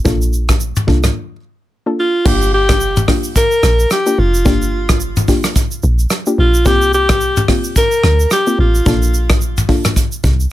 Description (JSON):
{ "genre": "afrobeats", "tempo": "109 BPM", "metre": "4/4", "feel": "swing 58% on 16ths", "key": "G minor", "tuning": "A4 = 440 Hz", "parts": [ { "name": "soft round pluck", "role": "accompaniment", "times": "0.0-9.9 s", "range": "Bb3 to A4", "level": "-19 LUFS", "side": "left 2 dB", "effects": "chorus" }, { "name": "deep log drum bass", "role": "bass", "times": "0.1-10.5 s", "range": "F1 to D2", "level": "-15 LUFS", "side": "equal", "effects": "none" }, { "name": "soft brush drum kit", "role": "drums", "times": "0.1-10.5 s", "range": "crash cymbal, hi-hat, kick drum, rim click, shaker, toms", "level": "-15 LUFS", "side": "equal", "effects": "none" }, { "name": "breathy alto saxophone", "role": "melody", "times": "2.0-9.4 s", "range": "F4 to Bb4", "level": "-15 LUFS", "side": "equal", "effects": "digital delay" } ], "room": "little or no reverb", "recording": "none", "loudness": "-11 LUFS", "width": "side -14 dB against mid", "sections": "0.0-2.3 A section; 2.3-10.5 B section", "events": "break 1.2-2.3", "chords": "0.1 Bbmaj7; 2.3 Gm7; 6.7 C7sus4; 8.9 Bbmaj7" }